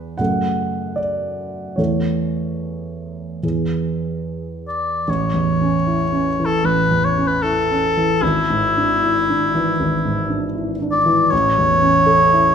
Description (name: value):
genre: classical, romantic duo for oboe and grand piano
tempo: 72-79 BPM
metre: 4/4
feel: rubato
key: A major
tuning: A4 = 440 Hz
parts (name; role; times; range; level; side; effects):
- dark concert grand piano; accompaniment; 0.0-12.5 s; G#1 to F#5; -20 LUFS; right 2 dB; none
- warm oboe; melody; 4.7-12.5 s; E4 to D5; -16 LUFS; left 2 dB; none
room: wet recital hall reverb, RT60 1.5 s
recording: minimal, uncompressed stereo recording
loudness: -16 LUFS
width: side -7 dB against mid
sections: 0.0-5.1 A section; 5.1-12.5 B section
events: none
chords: 0.2 F#m; 1.8 A/E; 3.4 E; 5.1 A; 8.2 E7/G#; 11.3 A